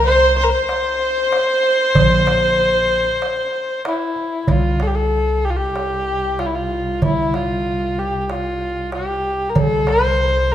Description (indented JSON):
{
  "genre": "Turkish makam ensemble",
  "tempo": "95 BPM",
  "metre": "4/4",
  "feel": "straight",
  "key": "C makam hicaz",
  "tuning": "A4 = 441 Hz",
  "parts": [
    { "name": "rich kamancheh", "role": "melody", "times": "0.0-10.5 s", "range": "E4 to C5", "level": "-18 LUFS", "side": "left 1 dB", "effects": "none" },
    { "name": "rich chamber violin section", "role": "second line", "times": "0.0-3.8 s", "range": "C5", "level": "-23 LUFS", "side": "left 1 dB", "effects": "none" },
    { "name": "upright bass", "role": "bass", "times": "0.0-10.5 s", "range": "Bb1 to C3", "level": "-22 LUFS", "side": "equal", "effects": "none" },
    { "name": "darbuka", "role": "percussion", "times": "0.7-10.5 s", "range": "none", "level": "-21 LUFS", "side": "right 2 dB", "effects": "none" },
    { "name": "warm double bass", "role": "drone", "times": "4.5-10.5 s", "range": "C2", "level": "-27 LUFS", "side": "left 1 dB", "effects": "none" }
  ],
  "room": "wet recital hall reverb, RT60 1.6 s",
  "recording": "minimal, uncompressed stereo recording",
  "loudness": "-16 LUFS",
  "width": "side -11 dB against mid",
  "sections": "0.0-4.5 A section; 4.5-10.5 B section",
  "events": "none",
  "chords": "none"
}